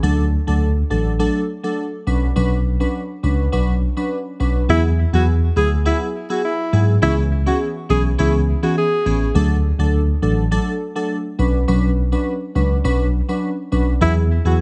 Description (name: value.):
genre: afrobeats.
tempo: 103 BPM.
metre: 4/4.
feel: straight.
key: B dorian.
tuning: A4 = 440 Hz.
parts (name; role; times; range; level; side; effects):
glassy digital keys; accompaniment; 0.0-14.6 s; E3 to B4; -23 LUFS; equal; chorus.
mellow tine electric piano; bass; 0.0-14.6 s; A1 to G#2; -20 LUFS; equal; none.
breathy alto saxophone; melody; 4.7-9.2, 14.0-14.6 s; E4 to G#4; -24 LUFS; equal; digital delay.
room: studio reverb.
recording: none.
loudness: -19 LUFS.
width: mono.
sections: 0.0-4.7 A section; 4.7-14.6 B section.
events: none.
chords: 0.0 D; 2.1 Bmadd9; 4.7 Eadd9; 7.0 C#m7; 9.4 D; 11.4 Bmadd9; 14.0 Eadd9.